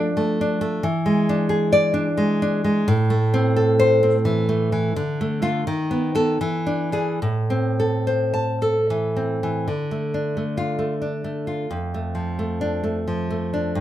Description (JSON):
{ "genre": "romantic piece for solo classical guitar", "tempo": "69-93 BPM", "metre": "3/4", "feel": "rubato", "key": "A minor, D minor from 9.7 s", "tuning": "A4 = 440 Hz", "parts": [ { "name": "nylon-string guitar", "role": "solo", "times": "0.0-13.8 s", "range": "F2 to A5", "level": "-19 LUFS", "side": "equal", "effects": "none" } ], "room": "moderate large studio reverb, RT60 0.8 s", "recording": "band playing live in one room", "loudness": "-19 LUFS", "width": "side -12 dB against mid", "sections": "0.0-9.7 A section; 9.7-13.8 B section", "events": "none", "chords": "0.0 Dm/F; 0.8 E7; 2.9 Am; 4.9 Dm; 5.6 B7/D#; 6.4 E7; 7.2 Am; 9.7 Dm; 11.7 Dm/F", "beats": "0.18 | 0.84 1.52 2.19 | 2.87 3.56 4.24 | 4.93 5.64 6.38 | 7.21 8.05 8.89 | 9.68 10.36 11.02 | 11.70 12.38 13.08 | 13.76" }